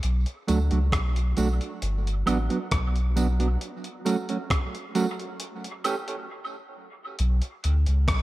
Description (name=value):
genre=dub reggae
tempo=67 BPM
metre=4/4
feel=straight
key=B minor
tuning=A4 = 440 Hz
part: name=warm sub bass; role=bass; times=0.0-8.2 s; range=G1 to D2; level=-23 LUFS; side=equal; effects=none
part: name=breakbeat sampler-style drum kit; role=drums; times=0.0-8.2 s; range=hi-hat, kick drum, rim click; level=-30 LUFS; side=equal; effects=dub echo
part: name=mellow electric guitar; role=accompaniment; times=0.5-7.9 s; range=E3 to G4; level=-29 LUFS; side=right 4 dB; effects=spring reverb, high-pass filter, dub echo
part: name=tambourine and woodblock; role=percussion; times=0.5-6.1 s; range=none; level=-36 LUFS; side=right 3 dB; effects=high-pass filter on perc, dub echo
room=little or no reverb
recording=none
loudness=-23 LUFS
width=side -17 dB against mid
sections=0.0-7.2 A section; 7.2-8.2 A section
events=break 3.6-7.2; filter sweep 3.6-8.2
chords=0.0 Bm7; 1.8 Gmaj7; 3.6 F#m; 5.4 A7; 7.2 Bm7